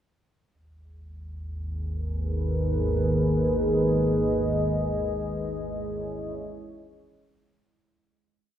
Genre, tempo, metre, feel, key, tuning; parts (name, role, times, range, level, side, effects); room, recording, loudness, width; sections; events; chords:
dark ambient drone; free time; G# minor; A4 = 440 Hz
deep dark ambient pad; sustained chords; 2.3-7.8 s; G#3 to D#5; -27 LUFS; equal; chorus, built-in reverb
deep rumbling drone; drone; 1.2-7.9 s; G#1 to D#2; -28 LUFS; equal; built-in reverb
wet spring reverb, RT60 2.4 s; small room reverb; -24 LUFS; side -10 dB against mid
0.5-7.8 A section
fade-out 4.2-7.8
0.5 G#madd9; 4.2 C#madd9/G#